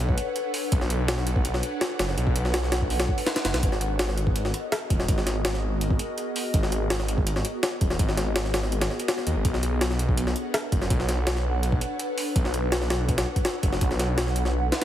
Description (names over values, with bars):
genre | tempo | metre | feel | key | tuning
drum and bass, jungle | 165 BPM | 4/4 | straight | unclear | A4 = 440 Hz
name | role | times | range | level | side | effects
ethereal airy pad | sustained chords | 0.0-14.8 s | B3 to F#5 | -31 LUFS | equal | ensemble chorus, built-in reverb, phaser, vintage 12-bit sampler grit
detuned saw bass | bass | 0.0-14.7 s | D#1 to D#2 | -26 LUFS | equal | none
jungle sampler-style drum kit | drums | 0.1-14.8 s | hi-hat, kick drum, snare drum | -26 LUFS | equal | overdrive, studio reverb
room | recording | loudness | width
light reverb, digital ambience | heavily compressed radio sound | -23 LUFS | side -12 dB against mid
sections
0.0-14.8 A section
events
none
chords
0.0 Bm7; 3.6 G#m7; 9.4 Bm7